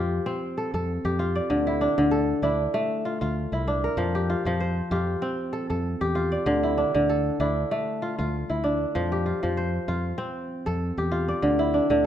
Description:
west african traditional, West African string and xylophone music; 97 BPM; 4/4; swing 54% on 16ths; F major; A4 = 440 Hz
kora; arpeggios; 0.0-12.1 s; D3 to D5; -24 LUFS; equal
fingered electric bass; bass; 0.0-12.1 s; C2 to F2; -29 LUFS; equal
light reverb; minimal, uncompressed stereo recording; -23 LUFS; side -10 dB against mid
0.0-12.1 A section
0.0 F; 1.5 Dm; 4.0 F; 6.5 Dm; 8.9 F; 11.4 Dm

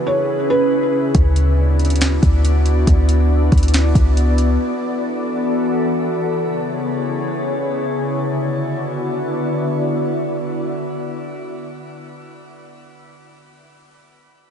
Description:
hip hop, atmospheric cloud-rap; 139 BPM; 4/4; half-time; D lydian; A4 = 440 Hz
felt-muted upright piano; melody; 0.0-1.1 s; B4 to C#5; -21 LUFS; right 2 dB; ping-pong delay
glassy FM pad; sustained chords; 0.0-12.3 s; C#3 to D5; -20 LUFS; left 1 dB; ensemble chorus, built-in reverb, sidechain pumping, low-pass filter
clean 808-style bass; bass; 1.1-4.6 s; C#2 to D2; -14 LUFS; equal
smooth R&B drum kit; drums; 1.1-4.5 s; hi-hat, kick drum, snare drum; -18 LUFS; equal; overdrive, vintage 12-bit sampler grit
light reverb, digital ambience; nothing above 10.6 kHz; -15 LUFS; side -8 dB against mid
0.0-1.1 A section; 1.1-8.1 B section; 8.1-11.5 C section
break 0.0-1.1
0.0 C#m7; 1.1 D6; 4.6 E9sus4; 6.3 C#m7; 8.1 D6

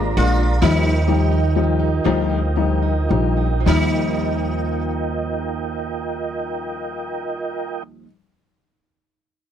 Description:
six-eight pop ballad; 35-45 BPM (dotted quarters); 6/8; straight; Eb major; A4 = 444 Hz
sitar; melody; 0.0-8.1 s; Eb4 to F4; -26 LUFS; right 1 dB
mellow tonewheel organ; sustained chords; 0.0-7.8 s; F4 to Bb5; -26 LUFS; right 3 dB; chorus vibrato, wide subtle chorus
fingerpicked plugged-in steel-string acoustic guitar; arpeggios; 0.0-8.2 s; F3 to Ab4; -28 LUFS; right 17 dB
upright bass; bass; 0.0-8.0 s; Ab1 to Eb2; -20 LUFS; equal
dark baby grand piano; accompaniment; 0.2-8.0 s; F3 to Eb4; -23 LUFS; left 9 dB
little or no reverb; dry, close 1970s-style studio recording; -18 LUFS; side -9 dB against mid
0.0-3.7 A section; 3.7-7.1 B section
slowing down 0.0-3.7
0.0 Bb7; 0.6 Ebadd9

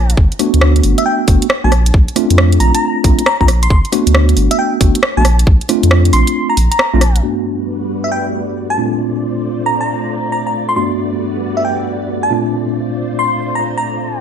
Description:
UK garage, two-step garage; 136 BPM; 4/4; swing 65% on 16ths; A4 = 439 Hz
bell-like FM electric piano; melody; 0.0-14.2 s; E5 to C6; -18 LUFS; equal; chorus, phaser, ping-pong delay
saturated sub bass; bass; 0.0-7.2 s; G1 to F2; -12 LUFS; equal; tube saturation
garage drum kit; drums; 0.1-7.2 s; hi-hat, rim click; -17 LUFS; right 1 dB; overdrive, low-pass filter on hats, studio reverb, low-pass filter on snare
electronic kick drum; drums; 0.2-5.6 s; -11 LUFS; equal; overdrive, studio reverb
mellow tine electric piano; stabs; 0.4-14.2 s; G2 to F#4; -17 LUFS; equal; medium stereo tremolo, low-pass filter, ping-pong delay
soft string machine; sustained chords; 7.4-14.2 s; G3 to D5; -24 LUFS; equal; phaser, ensemble chorus, sidechain pumping
light reverb; -11 LUFS; side -8 dB against mid
0.0-7.2 A section; 7.2-14.2 B section
break 6.4-7.2
0.2 Gmaj9; 1.7 Bbmaj9; 3.7 Gmaj9; 5.2 Bbmaj9; 7.2 Gmaj9; 8.8 Bbmaj9; 10.8 Gmaj9; 12.3 Bbmaj9

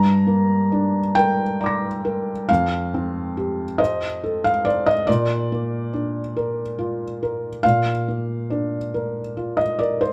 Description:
neoclassical minimalist piano; 46 BPM (dotted quarters); 6/8; rubato; Bb major; A4 = 441 Hz
felt-muted upright piano; solo; 0.0-10.1 s; F2 to Bb6; -22 LUFS; equal
moderate studio reverb, RT60 1.0 s; band playing live in one room; -22 LUFS; mono
0.0-10.1 A section
0.0 Gm; 2.5 Fadd9; 5.1 Bb

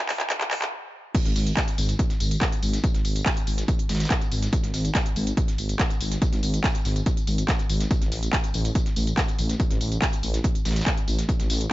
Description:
driving peak-time techno; 142 BPM; 4/4; straight; A4 = 440 Hz
dusty soul sampler-style drum kit; drums; 0.1-11.6 s; hi-hat, snare drum; -40 LUFS; right 1 dB
techno drum kit; drums; 0.1-11.7 s; crash cymbal, handclaps, hi-hat, tambourine; -29 LUFS; equal
electronic kick drum; drums; 0.3-11.4 s; -24 LUFS; equal; high-pass filter on kick, high-pass filter on room
dark detuned saw bass; bass; 1.3-11.7 s; G#1 to A1; -25 LUFS; equal; sidechain pumping
little or no reverb; high-pass filter, nothing above 7.6 kHz; -22 LUFS; side -17 dB against mid
0.0-1.1 A section; 1.1-11.7 B section
build-up 0.0-1.1; drum fill 0.0-0.7; stop 0.7-1.1; drop 1.1-11.7

